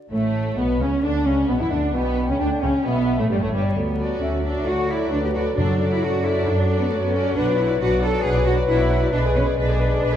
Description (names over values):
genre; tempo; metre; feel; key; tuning
quick classical-period movement for symphony orchestra; 133 BPM; 4/4; rubato; D major; A4 = 441 Hz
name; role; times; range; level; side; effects
rich studio violin section; melody; 0.1-10.2 s; G3 to F#5; -32 LUFS; left 2 dB; none
dark clarinet; second line; 0.1-10.2 s; G3 to B4; -30 LUFS; left 1 dB; none
rich chamber violin section; second line; 0.1-10.1 s; G3 to D5; -31 LUFS; left 3 dB; none
mellow bassoon; accompaniment; 0.1-10.2 s; G2 to G#3; -31 LUFS; equal; none
rich chamber viola section; accompaniment; 0.1-10.2 s; G3 to B4; -29 LUFS; right 3 dB; none
dark French horn section; sustained chords; 0.1-10.2 s; G3 to B4; -28 LUFS; left 6 dB; none
rich chamber double bass section; bass; 0.1-10.2 s; G1 to F#2; -24 LUFS; right 1 dB; none
rich studio cello section; bass; 0.1-10.2 s; G3 to A4; -26 LUFS; right 1 dB; none
small flute group; second line; 1.0-10.2 s; A4 to G5; -31 LUFS; equal; none
timpani; percussion; 5.6-6.2 s; F#2; -25 LUFS; equal; none
room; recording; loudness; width
moderate scoring stage reverb, RT60 1.8 s; dark, warm production, vinyl crackle; -18 LUFS; side -10 dB against mid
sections
0.1-10.2 A section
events
none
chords
0.1 D/A; 1.9 A7; 3.8 D; 5.6 D/F#; 7.4 Bm; 9.1 G#dim/B